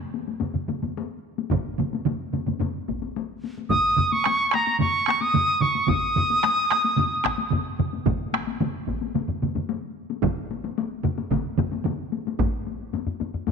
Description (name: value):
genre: japanese traditional, taiko drum ensemble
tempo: 110 BPM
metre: 4/4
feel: straight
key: unclear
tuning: A4 = 440 Hz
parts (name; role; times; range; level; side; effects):
- taiko ensemble; percussion; 0.1-13.5 s; none; -30 LUFS; left 10 dB; none
- taiko ensemble; percussion; 0.4-13.5 s; none; -30 LUFS; left 5 dB; none
- taiko ensemble; percussion; 0.4-12.0 s; none; -28 LUFS; right 10 dB; none
- taiko ensemble; percussion; 1.5-12.5 s; none; -30 LUFS; right 4 dB; none
- bright reedy wooden piccolo; melody; 3.7-7.5 s; Bb5 to Eb6; -21 LUFS; right 1 dB; none
room: wet echo chamber reverb, RT60 2.1 s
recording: 1960s-style stereo with parts hard left and right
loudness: -22 LUFS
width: side -6 dB against mid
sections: 0.0-12.4 A section; 12.4-13.5 B section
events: none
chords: none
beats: 0.41 0.96 | 1.51 2.06 2.61 3.16 | 3.71 4.26 4.80 5.35 | 5.89 6.44 6.98 7.53 | 8.07 8.61 9.15 9.70 | 10.24 10.78 11.32 11.86 | 12.39 12.93 13.47